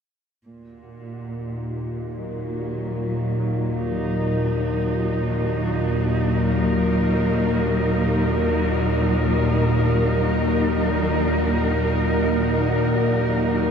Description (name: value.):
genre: dark ambient drone.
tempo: free time.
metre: none.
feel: none.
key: Eb minor.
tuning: A4 = 440 Hz.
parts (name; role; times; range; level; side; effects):
dark studio cello section; sustained chords; 0.5-13.7 s; Bb2 to Bb4; -23 LUFS; right 1 dB; shimmer reverb.
organ-like drone; drone; 1.3-13.7 s; Eb2 to Bb2; -22 LUFS; left 1 dB; ensemble chorus, built-in reverb.
flickering grainy texture; texture; 0.8-13.7 s; Gb4 to Gb5; -39 LUFS; equal; none.
bright grand piano; arpeggios; 3.4-13.7 s; none; barely audible; none; none.
room: wet lush hall reverb, RT60 2.6 s.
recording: dreamy mix soaked in reverb.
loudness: -19 LUFS.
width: side -6 dB against mid.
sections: 0.5-13.7 A section.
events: none.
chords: 0.5 Ebm.